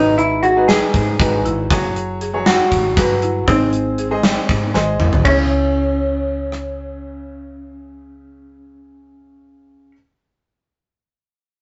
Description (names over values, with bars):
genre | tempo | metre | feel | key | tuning
progressive instrumental, band music in an uneven meter | 236 BPM (eighths) | 7/8 | straight | C# minor | A4 = 440 Hz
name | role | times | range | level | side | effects
hollow-body jazz guitar | melody | 0.0-9.9 s | B#3 to G#4 | -21 LUFS | equal | none
clear grand piano | accompaniment | 0.0-9.9 s | C#3 to E5 | -25 LUFS | equal | none
buzzing marimba with medium hard mallets | arpeggios | 0.0-10.0 s | C#4 to C#5 | -27 LUFS | equal | none
woody fretless electric bass | bass | 0.0-9.9 s | F#1 to G#2 | -26 LUFS | equal | none
gated 80s drum kit | drums | 0.2-6.6 s | crash cymbal, hi-hat, kick drum, rim click, snare drum, toms | -20 LUFS | equal | none
room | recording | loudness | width
moderate studio reverb, RT60 0.6 s | rough rehearsal-room recording, nothing above 7.8 kHz | -17 LUFS | mono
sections
0.0-5.3 A section; 5.3-8.8 B section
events
drum fill 4.8-5.3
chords
0.0 G#m7; 1.7 F#sus2; 3.5 G#; 5.3 C#m